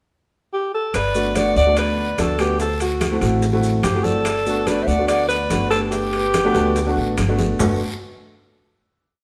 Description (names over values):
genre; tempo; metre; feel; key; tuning
Afro-Cuban jazz; 144 BPM; 4/4; straight; G major; A4 = 439 Hz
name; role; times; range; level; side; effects
warm alto saxophone; melody; 0.5-7.1 s; F#4 to D5; -23 LUFS; equal; none
breathy hollow jazz flute; second line; 0.9-7.1 s; A4 to F#5; -30 LUFS; equal; none
upright bass; bass; 0.9-7.8 s; G1 to D2; -26 LUFS; equal; none
bongos; percussion; 0.9-7.7 s; none; -34 LUFS; equal; none
congas; percussion; 0.9-7.7 s; none; -31 LUFS; equal; none
guiro; percussion; 0.9-7.7 s; none; -40 LUFS; equal; none
maracas; percussion; 0.9-7.7 s; none; -39 LUFS; equal; none
timbales; percussion; 0.9-7.7 s; none; -32 LUFS; equal; none
warm grand piano; accompaniment; 1.1-7.8 s; A3 to G4; -24 LUFS; equal; none
room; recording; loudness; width
moderate stone room reverb, RT60 1.3 s; band playing live in one room, lossy compression artefacts; -19 LUFS; mono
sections
0.0-0.9 pickup bar; 0.9-7.6 A section; 7.6-9.2 final chord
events
drum fill 7.4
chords
0.0 N.C.; 0.9 Gmaj7; 2.6 D7; 4.3 Gmaj7